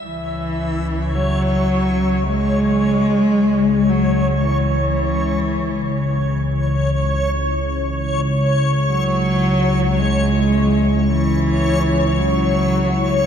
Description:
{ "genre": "dark ambient drone", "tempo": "free time", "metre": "none", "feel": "none", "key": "C# minor", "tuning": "A4 = 440 Hz", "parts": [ { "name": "warm cello", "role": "melody", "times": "0.0-13.3 s", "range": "E3 to G#3", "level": "-19 LUFS", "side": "equal", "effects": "tape echo" }, { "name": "sweeping resonant pad", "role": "sustained chords", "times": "0.0-13.3 s", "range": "C#3 to E4", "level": "-30 LUFS", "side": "right 2 dB", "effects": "chorus" }, { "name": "analog drone", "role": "drone", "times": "0.2-13.3 s", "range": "C#2 to C#3", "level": "-20 LUFS", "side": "equal", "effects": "lush chorus" }, { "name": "backwards swelling texture", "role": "texture", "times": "0.0-13.3 s", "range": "C#5", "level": "-23 LUFS", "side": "left 1 dB", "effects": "built-in reverb" } ], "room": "wet huge ambient reverb, RT60 8.9 s", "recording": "dark, warm production", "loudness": "-16 LUFS", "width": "side -8 dB against mid", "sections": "0.0-13.3 A section", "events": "fade-in on analog synth pad 0.0-13.3; filter sweep on synth drone 0.0-13.3", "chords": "0.0 C#m" }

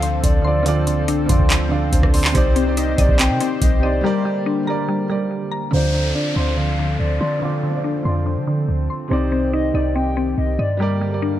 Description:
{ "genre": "hip hop, trap", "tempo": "142 BPM", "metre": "4/4", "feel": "half-time", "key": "D phrygian", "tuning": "A4 = 440 Hz", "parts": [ { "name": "hollow clarinet-like synth lead", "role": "second line", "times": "0.0-10.8 s", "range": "C5 to G5", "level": "-27 LUFS", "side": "left 3 dB", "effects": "chorus, digital delay" }, { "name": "dark baby grand piano", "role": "accompaniment", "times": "0.0-11.4 s", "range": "C3 to F5", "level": "-24 LUFS", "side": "right 4 dB", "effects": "low-pass filter" }, { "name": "warm analog pad", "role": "sustained chords", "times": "0.0-11.4 s", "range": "D3 to C5", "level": "-28 LUFS", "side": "equal", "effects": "chorus, tremolo, low-pass filter" }, { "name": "mallet-like synth pluck", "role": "arpeggios", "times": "0.0-11.4 s", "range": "D3 to C6", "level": "-23 LUFS", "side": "left 2 dB", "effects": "chorus, low-pass filter, digital delay" }, { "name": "clean 808-style bass", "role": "bass", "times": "0.0-11.4 s", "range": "C2 to D3", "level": "-21 LUFS", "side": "equal", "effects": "none" }, { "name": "booming analog drum machine", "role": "drums", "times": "0.0-3.8 s", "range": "handclaps, hi-hat, kick drum, rim click", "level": "-17 LUFS", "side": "equal", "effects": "none" }, { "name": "downlifter and swell", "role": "sound effects", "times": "5.7-11.4 s", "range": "none", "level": "-31 LUFS", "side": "equal", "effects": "none" } ], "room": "light reverb", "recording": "none", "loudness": "-16 LUFS", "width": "side -12 dB against mid", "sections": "0.0-5.7 A section; 5.7-11.4 B section", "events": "break 4.0-5.7; filter sweep 5.7-11.4", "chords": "0.0 Dm7; 2.3 Cmadd9; 4.0 Gm; 5.7 Dm7; 9.1 Cmadd9; 10.8 Gm" }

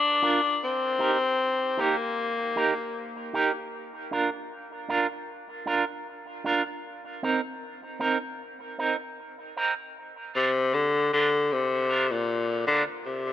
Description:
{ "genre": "reggae", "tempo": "77 BPM", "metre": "4/4", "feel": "straight", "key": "unclear", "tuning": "A4 = 440 Hz", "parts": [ { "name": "clear tenor saxophone", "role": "melody", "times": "0.0-3.3, 10.4-13.3 s", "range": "Bb2 to D4", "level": "-24 LUFS", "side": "left 3 dB", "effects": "dub echo" }, { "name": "electric guitar with an envelope filter", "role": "accompaniment", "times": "0.2-12.8 s", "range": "C4 to Bb4", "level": "-29 LUFS", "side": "right 4 dB", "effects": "tremolo, high-pass filter, dub echo" } ], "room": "moderate echo chamber reverb, RT60 2.2 s", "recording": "none", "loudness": "-24 LUFS", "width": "side -11 dB against mid", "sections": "0.0-9.9 A section; 9.9-13.3 B section", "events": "break 3.7-9.9; filter sweep on clean electric guitar 6.8-13.1", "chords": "0.0 C9sus4 (rootless); 0.6 Cm7; 3.7 Dm; 6.8 Cm7; 9.9 Bbadd9" }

